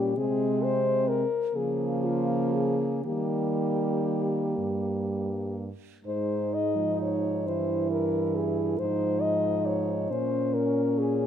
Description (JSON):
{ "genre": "classical, lyrical piece for horn quartet", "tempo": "38-46 BPM (dotted quarters)", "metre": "6/8", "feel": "rubato", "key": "Ab major", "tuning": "A4 = 440 Hz", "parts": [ { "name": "dark French horn", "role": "melody", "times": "0.0-11.3 s", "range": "F4 to Eb5", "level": "-29 LUFS", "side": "left 6 dB", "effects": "none" }, { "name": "mellow French horn", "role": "second line", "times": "0.0-11.3 s", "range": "F3 to E4", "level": "-32 LUFS", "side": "right 10 dB", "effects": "none" }, { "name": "mellow French horn", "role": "accompaniment", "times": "0.0-11.3 s", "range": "E3 to Db4", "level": "-32 LUFS", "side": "left 1 dB", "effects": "none" }, { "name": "dark French horn", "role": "bass", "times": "0.0-11.3 s", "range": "G2 to Eb3", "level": "-32 LUFS", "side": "right 2 dB", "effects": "none" } ], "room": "light reverb", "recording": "close, detailed microphones", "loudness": "-25 LUFS", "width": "side -9 dB against mid", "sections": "0.0-11.3 A section", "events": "none", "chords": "0.2 Ab/C; 1.5 Bbm/Db; 3.0 Eb; 6.1 Ab5; 7.5 C7b13/G; 8.8 Fm/Ab; 10.1 Bbm", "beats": "| 0.18 1.55 | 3.05 4.57 | 6.06 7.46 | 8.79 10.11" }